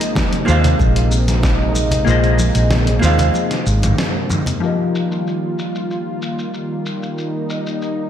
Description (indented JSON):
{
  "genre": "sunset chillout",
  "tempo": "94 BPM",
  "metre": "4/4",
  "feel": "straight",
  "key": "unclear",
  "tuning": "A4 = 440 Hz",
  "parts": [
    { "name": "vintage hollow-body jazz guitar", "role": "accompaniment", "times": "0.0-8.1 s", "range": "F3 to F5", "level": "-21 LUFS", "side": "moving between left 5 dB and right 2 dB", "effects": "auto-pan, low-pass filter, tape echo, slapback echo" },
    { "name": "lush unison pad", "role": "sustained chords", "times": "0.0-8.1 s", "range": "C3 to F4", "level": "-22 LUFS", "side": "equal", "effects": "chorus" },
    { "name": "hollow-body short-scale fingered electric bass", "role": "bass", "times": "0.0-3.9 s", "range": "Ab1 to Eb2", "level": "-15 LUFS", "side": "equal", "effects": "none" },
    { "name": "dusty soul sampler-style drum kit", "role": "drums", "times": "0.0-8.0 s", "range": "hi-hat, shaker, snare drum, toms", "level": "-23 LUFS", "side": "equal", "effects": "low-pass filter on perc, low-pass filter on hats, low-pass filter on snare, low-pass filter on toms, low-pass filter on room" },
    { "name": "electronic kick drum", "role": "drums", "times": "0.2-1.6 s", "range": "none", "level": "-19 LUFS", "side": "equal", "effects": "none" },
    { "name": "congas", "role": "percussion", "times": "0.2-4.6 s", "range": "none", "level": "-26 LUFS", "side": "left 1 dB", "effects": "none" }
  ],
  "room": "moderate lush hall reverb, RT60 1.9 s",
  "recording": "big arena sound",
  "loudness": "-15 LUFS",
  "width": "side -10 dB against mid",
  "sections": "0.0-4.6 A section; 4.6-8.1 B section",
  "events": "filter sweep on hollow-body jazz guitar 0.0-4.6, 4.6-8.1; kick drops out 2.1-4.6",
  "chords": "0.0 Bb9sus4; 4.6 F9sus4",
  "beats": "0.16 0.80 1.44 | 2.08 2.71 3.35 3.99 | 4.63 5.27 5.91 6.54 | 7.18 7.82"
}